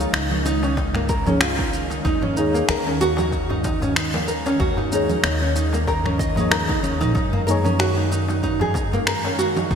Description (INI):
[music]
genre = organic downtempo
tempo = 94 BPM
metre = 4/4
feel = swing 56% on 16ths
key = Eb minor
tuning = A4 = 442 Hz
[part]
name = deep mellow chord stab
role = accompaniment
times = 0.0-9.7 s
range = F3 to Db5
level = -27 LUFS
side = left 2 dB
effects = chorus, sidechain pumping, digital delay, shimmer reverb
[part]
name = ethereal airy pad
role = sustained chords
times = 0.0-9.8 s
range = Eb3 to F5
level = -30 LUFS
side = equal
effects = ensemble chorus, built-in reverb, sidechain pumping, shimmer reverb
[part]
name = nylon-string guitar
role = arpeggios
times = 0.0-9.8 s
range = Bb3 to Eb5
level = -23 LUFS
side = right 2 dB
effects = digital delay, shimmer reverb
[part]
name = upright bass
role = bass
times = 0.0-9.8 s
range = Bb1 to Gb2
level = -25 LUFS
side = equal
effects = sidechain pumping
[part]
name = electronic shaker, finger snaps and congas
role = drums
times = 0.0-9.8 s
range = none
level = -25 LUFS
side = right 1 dB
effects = gated reverb
[part]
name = darbuka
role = percussion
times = 0.4-9.7 s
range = none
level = -32 LUFS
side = left 2 dB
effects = none
[part]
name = electronic kick drum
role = drums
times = 0.8-9.8 s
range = none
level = -26 LUFS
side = equal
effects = overdrive
[sound]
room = moderate lush hall reverb, RT60 2.8 s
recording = bright 1980s-style digital production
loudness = -18 LUFS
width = side -7 dB against mid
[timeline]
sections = 0.0-9.8 A section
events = none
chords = 0.0 Db69; 2.0 Eb7(no3); 7.2 Gbmaj7